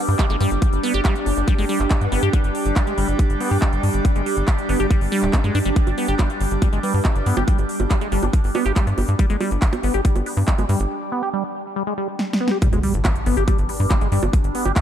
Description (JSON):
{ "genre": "psychedelic trance", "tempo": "140 BPM", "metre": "4/4", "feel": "straight", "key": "G major", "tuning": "A4 = 440 Hz", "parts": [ { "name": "resonant blip pluck", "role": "second line", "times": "0.0-10.4, 13.7-13.9 s", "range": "B3 to D4", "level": "-36 LUFS", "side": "left 4 dB", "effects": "none" }, { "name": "overtone-sweeping drone", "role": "sustained chords", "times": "0.0-14.8 s", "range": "G3 to D4", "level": "-28 LUFS", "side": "equal", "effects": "chorus, built-in reverb, phaser, sidechain pumping" }, { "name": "airy breathy pad", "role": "texture", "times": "0.0-10.9 s", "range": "D4 to D6", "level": "-29 LUFS", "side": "right 3 dB", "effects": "chorus, sidechain pumping" }, { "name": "tight sequencer bass", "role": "bass", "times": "0.1-14.7 s", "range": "D1 to G2", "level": "-21 LUFS", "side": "equal", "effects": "none" }, { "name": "big-room dance drum kit", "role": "drums", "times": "0.1-14.8 s", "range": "bongos, handclaps, hi-hat, snare drum", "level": "-28 LUFS", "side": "right 2 dB", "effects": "overdrive, small room ambience" }, { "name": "liquid acid bass", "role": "riff", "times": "0.2-14.8 s", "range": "G3 to G4", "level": "-25 LUFS", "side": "moving between left 5 dB and right 6 dB", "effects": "phaser, auto-pan, sidechain pumping, tape echo" }, { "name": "electronic kick drum", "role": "drums", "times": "0.2-14.8 s", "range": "none", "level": "-18 LUFS", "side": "equal", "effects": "overdrive, small room ambience" }, { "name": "impact", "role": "sound effects", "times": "12.6-14.3 s", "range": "none", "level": "-27 LUFS", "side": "equal", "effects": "none" } ], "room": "digital ambience", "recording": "dark, warm production", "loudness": "-17 LUFS", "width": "side -10 dB against mid", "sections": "0.0-12.6 A section; 12.6-14.8 B section", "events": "break 10.9-12.6; drum fill 12.2-12.6; drop 12.6-14.8; impact 12.6-14.3", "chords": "0.0 G5" }